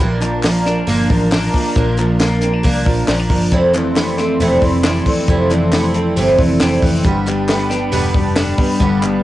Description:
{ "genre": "jangly indie pop", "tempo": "136 BPM", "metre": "4/4", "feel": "straight", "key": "unclear", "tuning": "A4 = 440 Hz", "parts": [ { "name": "picked twelve-string acoustic guitar", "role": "accompaniment", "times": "0.0-9.2 s", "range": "F2 to D4", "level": "-18 LUFS", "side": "right 3 dB", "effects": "cassette tape" }, { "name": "hollow soft pad", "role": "sustained chords", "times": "0.0-9.2 s", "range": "D4 to C6", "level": "-23 LUFS", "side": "equal", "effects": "ensemble chorus, cassette tape, plate reverb" }, { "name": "semi-hollow electric guitar", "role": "arpeggios", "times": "0.0-9.2 s", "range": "F2 to D4", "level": "-19 LUFS", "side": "left 3 dB", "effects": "cassette tape" }, { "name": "vintage muted fingered electric bass", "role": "bass", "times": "0.0-9.2 s", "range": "E1 to C2", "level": "-22 LUFS", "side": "equal", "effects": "none" }, { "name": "compact cocktail drum kit", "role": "drums", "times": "0.2-9.1 s", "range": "hi-hat, kick drum, snare drum", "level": "-18 LUFS", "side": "equal", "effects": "cassette tape" }, { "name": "group handclap", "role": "percussion", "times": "0.2-9.1 s", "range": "none", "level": "-28 LUFS", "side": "left 2 dB", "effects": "none" } ], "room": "wet booth ambience, RT60 0.2 s", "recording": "home recording on cassette, nothing above 10.6 kHz", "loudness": "-13 LUFS", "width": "side -15 dB against mid", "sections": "0.0-9.2 A section", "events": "none", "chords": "0.0 Bb; 3.5 Fmaj7; 7.0 G", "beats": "0.43 0.87 1.31 | 1.76 2.20 2.64 3.08 | 3.52 3.96 4.40 4.84 | 5.28 5.72 6.17 6.61 | 7.05 7.49 7.93 8.37 | 8.81" }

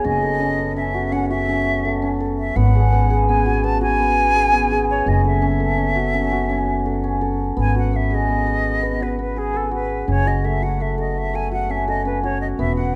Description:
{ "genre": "contemporary instrumental, chamber music in an uneven meter", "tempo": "168 BPM", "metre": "7/4", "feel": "straight", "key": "unclear", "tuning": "A4 = 440 Hz", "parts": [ { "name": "bright silver concert flute", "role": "melody", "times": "0.0-13.0 s", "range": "G#4 to A5", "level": "-25 LUFS", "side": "equal", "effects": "none" }, { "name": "hammered dulcimer", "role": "arpeggios", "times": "0.0-13.0 s", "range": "A3 to B4", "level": "-24 LUFS", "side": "equal", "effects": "none" }, { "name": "upright bass", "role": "bass", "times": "0.1-13.0 s", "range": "E1 to G#1", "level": "-24 LUFS", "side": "equal", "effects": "none" } ], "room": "light reverb", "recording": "dark, warm production", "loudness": "-20 LUFS", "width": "mono", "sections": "0.0-7.6 A section; 7.6-13.0 B section", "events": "none", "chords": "0.1 F#m7; 2.6 G#m7; 5.1 F#m7; 7.6 G#m7; 10.1 F#m", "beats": "| 0.05 0.41 0.77 1.13 1.49 1.84 2.20 | 2.56 2.92 3.27 3.63 3.99 4.35 4.71 | 5.07 5.42 5.78 6.14 6.50 6.86 7.21 | 7.57 7.93 8.29 8.65 9.01 9.37 9.72 | 10.08 10.44 10.80 11.16 11.52 11.88 12.23 | 12.59 12.95" }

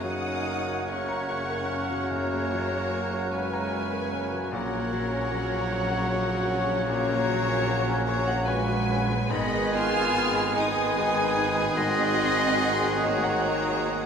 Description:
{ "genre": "classical, romantic movement for piano and orchestra", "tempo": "44-52 BPM (dotted quarters)", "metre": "12/8", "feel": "rubato", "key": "F# major", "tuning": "A4 = 439 Hz", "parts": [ { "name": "clear grand piano", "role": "melody", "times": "0.0-14.1 s", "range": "F#2 to A#5", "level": "-32 LUFS", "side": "left 2 dB", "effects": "none" }, { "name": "rich studio violin section", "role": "melody", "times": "0.0-14.1 s", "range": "F#5 to E#6", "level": "-34 LUFS", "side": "left 2 dB", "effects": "none" }, { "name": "concert flute", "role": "second line", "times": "0.0-14.0 s", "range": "A#4 to G#5", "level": "-33 LUFS", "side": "left 2 dB", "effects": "none" }, { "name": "dark clarinet", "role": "second line", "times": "0.0-14.1 s", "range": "G#4 to C#5", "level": "-37 LUFS", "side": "left 1 dB", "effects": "none" }, { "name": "mellow oboe", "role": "second line", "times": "0.0-14.1 s", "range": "F#5 to G#5", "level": "-36 LUFS", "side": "right 1 dB", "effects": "none" }, { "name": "warm studio violin section", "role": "second line", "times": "0.0-14.1 s", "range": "A#4 to G#5", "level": "-36 LUFS", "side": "left 2 dB", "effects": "none" }, { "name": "mellow bassoon", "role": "accompaniment", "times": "0.0-14.1 s", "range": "C#3 to D#3", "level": "-35 LUFS", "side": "right 1 dB", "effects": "none" }, { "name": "rich studio viola section", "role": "accompaniment", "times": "0.0-14.1 s", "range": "G#3 to G#4", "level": "-37 LUFS", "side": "left 1 dB", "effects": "none" }, { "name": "clear trombone section", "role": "sustained chords", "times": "0.0-14.1 s", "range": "G#2 to G#3", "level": "-38 LUFS", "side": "right 4 dB", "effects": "none" }, { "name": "warm French horn section", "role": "sustained chords", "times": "0.0-14.1 s", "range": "G#3 to F#4", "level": "-38 LUFS", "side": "left 3 dB", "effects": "none" }, { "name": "bright trumpet", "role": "stabs", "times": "0.0-14.1 s", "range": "G#4 to C#5", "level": "-34 LUFS", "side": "right 2 dB", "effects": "none" }, { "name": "mellow tuba", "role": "bass", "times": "0.0-14.1 s", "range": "F#1 to A#1", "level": "-36 LUFS", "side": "right 3 dB", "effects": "none" }, { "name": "rich studio cello section", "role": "bass", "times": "0.0-14.1 s", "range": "F#3 to E#4", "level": "-34 LUFS", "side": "right 4 dB", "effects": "none" }, { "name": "rich studio double bass section", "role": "bass", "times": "0.0-14.1 s", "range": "F#1 to A#1", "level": "-34 LUFS", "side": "right 1 dB", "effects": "none" } ], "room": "wet concert hall reverb, RT60 1.9 s", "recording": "minimal, uncompressed stereo recording", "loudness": "-23 LUFS", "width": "side -6 dB against mid", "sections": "0.0-14.1 A section", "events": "none", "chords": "0.0 F#; 4.5 F#/A#; 9.3 G#m; 11.8 G#7", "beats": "0.89 2.11 3.33 | 4.53 5.73 6.90 8.07 | 9.32 10.55 11.77 13.02" }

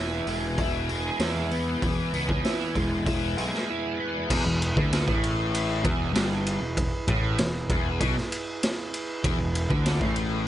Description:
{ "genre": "psychedelic rock", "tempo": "97 BPM", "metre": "4/4", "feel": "straight", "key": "E major", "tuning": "A4 = 440 Hz", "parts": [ { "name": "combo organ", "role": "sustained chords", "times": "0.0-10.5 s", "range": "E4 to G#5", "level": "-35 LUFS", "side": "right 4 dB", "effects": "none" }, { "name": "overdriven electric guitar", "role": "riff", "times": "0.0-10.5 s", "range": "E2 to G#4", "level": "-27 LUFS", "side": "left 1 dB", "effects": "rotary speaker" }, { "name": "fuzz picked electric bass", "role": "bass", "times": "0.0-10.5 s", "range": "E1 to E2", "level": "-30 LUFS", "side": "equal", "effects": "overdrive" }, { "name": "raw garage drum kit", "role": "drums", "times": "0.3-10.3 s", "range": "crash cymbal, hi-hat, kick drum, ride cymbal, snare drum", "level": "-28 LUFS", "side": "equal", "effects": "none" } ], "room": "small room reverb", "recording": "nothing above 10.9 kHz", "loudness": "-24 LUFS", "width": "side -12 dB against mid", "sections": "0.0-4.3 A section; 4.3-10.5 B section", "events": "none", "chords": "0.0 E", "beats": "0.59 1.21 | 1.83 2.45 3.07 3.69 | 4.30 4.92 5.54 6.16 | 6.78 7.39 8.01 8.63 | 9.25 9.86" }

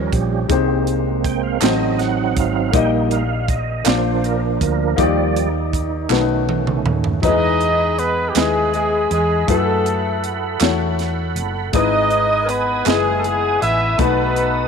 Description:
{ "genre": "slow gospel", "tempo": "53 BPM (dotted quarters)", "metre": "6/8", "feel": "straight", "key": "Eb major, E major from 7.2 s", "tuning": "A4 = 443 Hz", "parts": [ { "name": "warm upright piano", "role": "accompaniment", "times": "0.0-14.7 s", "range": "G#2 to Eb5", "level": "-22 LUFS", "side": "left 14 dB", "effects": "none" }, { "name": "tonewheel organ", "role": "sustained chords", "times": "0.0-14.7 s", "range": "D#3 to D#6", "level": "-23 LUFS", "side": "right 11 dB", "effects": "slow rotary speaker, chorus vibrato" }, { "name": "hollow-body short-scale fingered electric bass", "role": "bass", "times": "0.0-14.7 s", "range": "F#1 to F#2", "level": "-23 LUFS", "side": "equal", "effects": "none" }, { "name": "crisp fusion drum kit", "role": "drums", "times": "0.1-14.5 s", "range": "hi-hat, kick drum, snare drum, toms", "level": "-22 LUFS", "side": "right 4 dB", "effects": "none" }, { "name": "group handclap", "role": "percussion", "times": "1.6-13.2 s", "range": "none", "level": "-26 LUFS", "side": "right 13 dB", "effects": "none" }, { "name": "clear trumpet", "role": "melody", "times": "7.2-14.7 s", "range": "G4 to E5", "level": "-22 LUFS", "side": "right 3 dB", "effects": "tape echo" }, { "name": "mellow horn section", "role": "melody", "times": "7.2-14.7 s", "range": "G#3 to E5", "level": "-20 LUFS", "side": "left 2 dB", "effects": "none" } ], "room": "moderate plate reverb, RT60 3.3 s", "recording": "1960s-style stereo with parts hard left and right", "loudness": "-16 LUFS", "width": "side -6 dB against mid", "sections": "0.0-7.2 A section; 7.2-14.7 B section", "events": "tonewheel organ solo 0.0-7.2; drum fill 6.1-7.2", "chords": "0.0 Eb9; 0.5 Abmaj7/C; 1.6 Adim7; 2.7 Eb/Bb; 3.9 Bb; 5.0 Ebmaj7; 6.1 B7; 7.2 Emaj7; 9.5 B7sus4/F#; 11.7 Emaj7/G#; 14.0 B7", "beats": "| 0.50 1.62 | 2.74 3.86 | 4.99 6.11 | 7.23 8.36 | 9.48 10.61 | 11.74 12.87 | 13.99" }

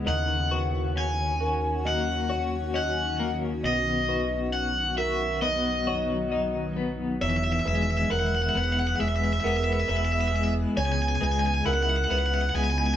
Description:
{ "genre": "post-rock", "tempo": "67 BPM", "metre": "4/4", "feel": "straight", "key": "E lydian", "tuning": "A4 = 441 Hz", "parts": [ { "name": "granular cloud pad", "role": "sustained chords", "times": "0.0-13.0 s", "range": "C#3 to G#4", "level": "-34 LUFS", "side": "equal", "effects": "built-in reverb" }, { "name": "felt-muted upright piano", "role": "arpeggios", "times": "0.0-13.0 s", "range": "A#4 to D#5", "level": "-34 LUFS", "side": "right 2 dB", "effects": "none" }, { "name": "twelve-string electric guitar", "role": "arpeggios", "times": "0.0-13.0 s", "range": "E2 to F#4", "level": "-31 LUFS", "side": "left 3 dB", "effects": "tremolo" }, { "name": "growling fingered electric bass", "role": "bass", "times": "0.0-12.9 s", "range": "E1 to D#2", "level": "-29 LUFS", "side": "right 1 dB", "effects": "overdrive" }, { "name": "cranked stack guitar", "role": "melody", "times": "0.1-13.0 s", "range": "D#5 to G#5", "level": "-28 LUFS", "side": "left 1 dB", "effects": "overdrive" } ], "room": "wet studio reverb, RT60 0.6 s", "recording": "band playing live in one room", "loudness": "-24 LUFS", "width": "side -10 dB against mid", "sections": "0.0-7.2 A section; 7.2-13.0 B section", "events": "none", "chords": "0.1 D#m7; 3.6 B; 7.2 E; 10.8 C#m7", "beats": "| 0.06 0.96 1.85 2.75 | 3.64 4.54 5.43 6.32 | 7.21 8.10 8.99 9.88 | 10.77 11.66 12.55" }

